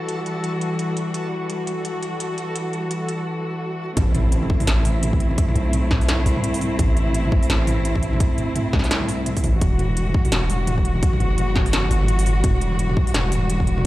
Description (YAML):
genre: half-time drum and bass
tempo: 170 BPM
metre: 4/4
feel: swing 59% on 16ths, half-time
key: A dorian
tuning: A4 = 440 Hz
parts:
  - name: rich studio cello section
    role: sustained chords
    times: 0.0-13.9 s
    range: E3 to F#4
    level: -25 LUFS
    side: left 1 dB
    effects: sidechain pumping
  - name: backwards swelling texture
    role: texture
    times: 0.0-3.3 s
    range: A4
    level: -35 LUFS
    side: equal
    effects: built-in reverb
  - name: industrial drum kit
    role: drums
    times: 0.1-13.8 s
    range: hi-hat, snare drum, toms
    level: -25 LUFS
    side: equal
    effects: low-pass filter on hats, low-pass filter on toms, low-pass filter on snare, low-pass filter on room
  - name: long sustained 808-style bass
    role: bass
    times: 4.0-13.8 s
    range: E1 to C2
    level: -21 LUFS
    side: equal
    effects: none
  - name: electronic kick drum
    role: drums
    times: 4.0-13.7 s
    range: none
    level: -20 LUFS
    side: equal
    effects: none
  - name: impact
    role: sound effects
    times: 4.0-5.4 s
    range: none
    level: -28 LUFS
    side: equal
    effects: none
room: little or no reverb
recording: played on a big sound system in a bare room, large studio reverb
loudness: -18 LUFS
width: side -17 dB against mid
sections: 0.0-4.0 A section; 4.0-13.9 B section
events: break 3.3-4.0; drop 4.0-13.9; impact 4.0-5.4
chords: 0.0 Emadd9; 4.0 Am; 9.6 Emadd9